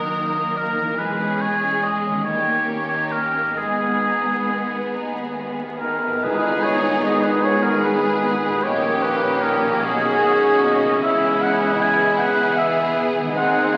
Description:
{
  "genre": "classical, slow romantic movement for symphony orchestra",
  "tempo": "44-53 BPM (dotted quarters)",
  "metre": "6/8",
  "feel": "rubato",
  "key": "G# minor",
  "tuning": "A4 = 438 Hz",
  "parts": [
    { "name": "rich studio violin section", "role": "melody", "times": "0.0-13.8 s", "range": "E4 to A#4", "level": "-30 LUFS", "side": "equal", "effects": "none" },
    { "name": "rich studio violin section", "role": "second line", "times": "0.0-13.8 s", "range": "G3 to E4", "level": "-32 LUFS", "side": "equal", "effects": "none" },
    { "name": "warm oboe", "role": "second line", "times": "0.0-13.7 s", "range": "G#4 to G#5", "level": "-25 LUFS", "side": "equal", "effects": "none" },
    { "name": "rich studio viola section", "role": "accompaniment", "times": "0.0-13.8 s", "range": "D#3 to C#4", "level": "-30 LUFS", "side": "equal", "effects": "none" },
    { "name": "concert harp", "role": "arpeggios", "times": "0.0-13.8 s", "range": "F#2 to D#5", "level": "-35 LUFS", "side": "equal", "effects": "none" },
    { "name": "rich studio double bass section", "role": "bass", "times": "0.0-13.8 s", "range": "E1 to D#2", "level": "-39 LUFS", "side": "equal", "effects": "none" },
    { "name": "warm studio cello section", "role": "bass", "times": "0.0-13.8 s", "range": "D#2 to C#3", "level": "-34 LUFS", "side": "equal", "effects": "none" },
    { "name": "cymbal swell and tam-tam", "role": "percussion", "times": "3.6-9.4 s", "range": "none", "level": "-34 LUFS", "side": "equal", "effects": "none" },
    { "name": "dark trumpet", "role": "stabs", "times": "5.8-13.8 s", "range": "G#4 to G#5", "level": "-25 LUFS", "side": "equal", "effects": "none" },
    { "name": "baroque flute", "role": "second line", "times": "6.2-13.8 s", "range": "B5 to D#6", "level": "-34 LUFS", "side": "equal", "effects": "none" },
    { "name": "bright clarinet", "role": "second line", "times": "6.2-13.8 s", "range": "G4 to G#4", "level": "-31 LUFS", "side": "equal", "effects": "none" },
    { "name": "clear bassoon", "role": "accompaniment", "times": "6.2-13.8 s", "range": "G#3 to B3", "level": "-32 LUFS", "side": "equal", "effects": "none" },
    { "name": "mellow French horn section", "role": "sustained chords", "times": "6.2-13.8 s", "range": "A#3 to A#4", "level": "-29 LUFS", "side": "equal", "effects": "none" },
    { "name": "mellow trombone section", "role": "sustained chords", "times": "6.2-13.8 s", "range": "D#3 to G#3", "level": "-34 LUFS", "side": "equal", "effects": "none" }
  ],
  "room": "wet scoring stage reverb, RT60 1.6 s",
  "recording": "very old 78 rpm record, vinyl crackle",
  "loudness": "-20 LUFS",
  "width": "mono",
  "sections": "0.0-6.2 A section; 6.2-13.8 A section",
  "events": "band accent 6.2-7.0",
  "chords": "0.0 D#m/F#; 1.0 C#m/E; 2.3 D#7; 3.6 G#m; 8.6 D#7/A#; 9.8 G#m/B; 11.0 C#m7"
}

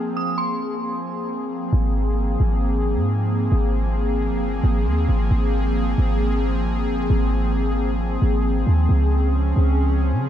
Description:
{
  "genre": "hip hop",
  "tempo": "134 BPM",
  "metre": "4/4",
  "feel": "half-time",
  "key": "Ab major",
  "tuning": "A4 = 441 Hz",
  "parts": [
    { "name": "airy breathy pad", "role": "sustained chords", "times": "0.0-10.3 s", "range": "F3 to Ab4", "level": "-23 LUFS", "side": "left 1 dB", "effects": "chorus, low-pass filter" },
    { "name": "dark detuned synth bell", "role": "melody", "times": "0.2-1.2 s", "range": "C6 to Eb6", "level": "-29 LUFS", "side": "right 1 dB", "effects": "chorus, phaser, low-pass filter, ping-pong delay" },
    { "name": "clean 808-style bass", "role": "bass", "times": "1.7-10.3 s", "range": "G1 to Db3", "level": "-20 LUFS", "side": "equal", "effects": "none" }
  ],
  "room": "digital ambience",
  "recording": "none",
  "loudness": "-18 LUFS",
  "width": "side -10 dB against mid",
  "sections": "0.0-1.7 A section; 1.7-10.3 B section",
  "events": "filter sweep 0.0-1.7",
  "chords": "0.0 Ab69; 8.9 Dbmaj7"
}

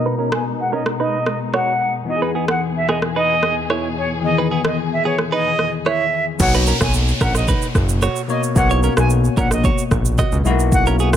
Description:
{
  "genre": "afrobeats",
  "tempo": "111 BPM",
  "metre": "4/4",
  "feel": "straight",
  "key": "B major",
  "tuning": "A4 = 441 Hz",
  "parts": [
    { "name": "bright reedy concert flute", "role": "melody", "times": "0.0-11.2 s", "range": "C#5 to G#5", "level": "-22 LUFS", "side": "right 1 dB", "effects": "low-pass filter, digital delay" },
    { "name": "bell-like tine electric piano", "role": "accompaniment", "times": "0.0-11.2 s", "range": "B2 to C#5", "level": "-22 LUFS", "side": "left 5 dB", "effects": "lush chorus, low-pass filter" },
    { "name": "warm studio string section", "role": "sustained chords", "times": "0.0-6.4 s", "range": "E2 to G#4", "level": "-27 LUFS", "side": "left 2 dB", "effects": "low-pass filter" },
    { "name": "direct-recorded clean electric guitar", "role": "riff", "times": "0.1-11.1 s", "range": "B3 to D#5", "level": "-25 LUFS", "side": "right 6 dB", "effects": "low-pass filter, digital delay" },
    { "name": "afro-pop drum kit", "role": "drums", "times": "0.3-11.2 s", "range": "crash cymbal, kick drum, rim click, shaker", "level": "-21 LUFS", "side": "right 1 dB", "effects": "none" },
    { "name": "fat analog bass", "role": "bass", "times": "6.4-11.2 s", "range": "F#1 to C#2", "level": "-18 LUFS", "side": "equal", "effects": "none" },
    { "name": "downlifter", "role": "sound effects", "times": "6.4-10.7 s", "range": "none", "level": "-27 LUFS", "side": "right 1 dB", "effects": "none" }
  ],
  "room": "little or no reverb",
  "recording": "none",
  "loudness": "-16 LUFS",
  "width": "side -10 dB against mid",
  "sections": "0.0-6.4 A section; 6.4-11.2 B section",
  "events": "filter sweep 0.0-6.4",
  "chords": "0.0 Bmaj7; 2.1 Emaj7; 6.4 Bmaj9; 8.6 D#m7 (rootless); 10.5 F#7"
}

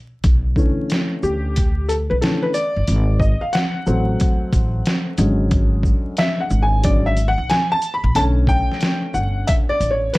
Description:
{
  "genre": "hip hop, jazz-hop",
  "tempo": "91 BPM",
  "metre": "4/4",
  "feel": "swing 65% on 16ths",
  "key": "B minor",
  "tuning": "A4 = 440 Hz",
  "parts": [
    { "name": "upright bass", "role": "bass", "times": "0.2-10.1 s", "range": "G1 to D2", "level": "-19 LUFS", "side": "equal", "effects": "none" },
    { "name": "trip hop sampler-style drum kit", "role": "drums", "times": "0.2-10.2 s", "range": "hi-hat, kick drum, shaker, snare drum", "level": "-19 LUFS", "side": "equal", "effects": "none" },
    { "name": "warm upright piano", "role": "accompaniment", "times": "0.6-10.2 s", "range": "D3 to B5", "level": "-21 LUFS", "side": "left 1 dB", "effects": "plate reverb" }
  ],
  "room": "light reverb",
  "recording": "vinyl crackle",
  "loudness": "-16 LUFS",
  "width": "side -20 dB against mid",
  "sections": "0.2-10.2 A section",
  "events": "upright piano solo 0.2-10.2",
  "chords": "0.2 Bm11; 2.9 G#7b9; 5.2 E13/G#; 8.2 Bm7"
}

